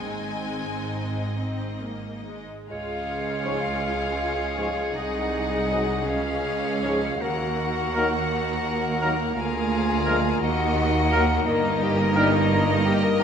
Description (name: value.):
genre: classical, slow romantic movement for symphony orchestra.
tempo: 42-58 BPM (dotted quarters).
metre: 6/8.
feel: rubato.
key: Db major.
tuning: A4 = 441 Hz.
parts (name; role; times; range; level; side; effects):
rich chamber violin section; melody; 0.0-13.2 s; Eb5 to Ab5; -34 LUFS; left 7 dB; none.
rich chamber violin section; second line; 0.0-13.2 s; Bb3 to Eb5; -32 LUFS; left 3 dB; none.
rich symphonic viola section; accompaniment; 0.0-13.2 s; Ab3 to F4; -32 LUFS; right 3 dB; none.
rich chamber double bass section; bass; 0.0-13.2 s; G1 to Eb2; -30 LUFS; right 3 dB; none.
rich symphonic cello section; bass; 0.0-13.2 s; C2 to Ab2; -29 LUFS; right 2 dB; none.
clear oboe; second line; 2.7-13.2 s; Bb4 to Eb5; -33 LUFS; equal; none.
small flute group; second line; 2.7-13.2 s; Eb5 to Ab5; -32 LUFS; left 2 dB; none.
warm clarinet; second line; 2.7-13.2 s; Eb4 to Ab4; -32 LUFS; left 2 dB; none.
dark bassoon; accompaniment; 2.7-13.2 s; Ab3 to Bb3; -32 LUFS; equal; none.
clear French horn section; sustained chords; 3.4-13.2 s; Ab3 to Ab4; -32 LUFS; left 5 dB; none.
mellow trombone section; sustained chords; 3.4-13.2 s; Ab2 to Ab3; -34 LUFS; right 3 dB; none.
warm trumpet section; stabs; 3.4-13.2 s; Bb4 to Eb5; -30 LUFS; left 1 dB; none.
room: wet scoring stage reverb, RT60 1.5 s.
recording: none.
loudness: -22 LUFS.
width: side -7 dB against mid.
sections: 0.0-2.7 A section; 2.7-13.2 B section.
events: none.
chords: 0.0 Ab; 2.7 Db; 4.9 Ab7/C; 6.1 Db; 7.2 Ebm; 9.4 Bb7/D; 10.4 Ebm; 11.5 Eb/G.